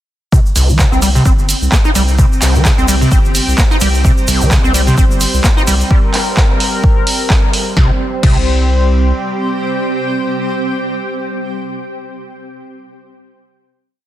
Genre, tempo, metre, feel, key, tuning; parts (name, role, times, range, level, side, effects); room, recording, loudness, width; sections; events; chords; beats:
acid house; 129 BPM; 4/4; swing 56% on 16ths; A4 = 438 Hz
overdriven acid bass; riff; 0.3-8.4 s; C2 to Eb4; -17 LUFS; equal; wide subtle chorus, sidechain pumping, dub echo
electronic kick drum; drums; 0.3-8.4 s; -12 LUFS; equal
tube shaker; percussion; 0.3-5.9 s; -23 LUFS; right 2 dB
granular cloud pad; texture; 1.4-11.8 s; C4 to G5; -22 LUFS; equal; built-in reverb, sidechain pumping
saturated sub bass; bass; 0.6-9.1 s; G1 to C2; -14 LUFS; equal; sidechain pumping
punchy analog drum machine; drums; 0.6-8.4 s; crash cymbal, handclaps, hi-hat, snare drum; -18 LUFS; right 1 dB
warm analog pad; sustained chords; 4.0-11.6 s; G3 to C5; -20 LUFS; equal; chorus, tremolo, sidechain pumping
digital ambience; dense, heavily limited modern master; -10 LUFS; side -13 dB against mid
0.3-7.8 groove; 7.8-11.5 final chord
0.3 C5
| 0.33 0.79 1.26 1.72 | 2.19 2.65 3.12 3.58 | 4.05 4.51 4.98 5.44 | 5.91 6.37 6.84 7.30 | 7.77 8.23 8.70 9.16 | 9.63 10.09 10.56 11.02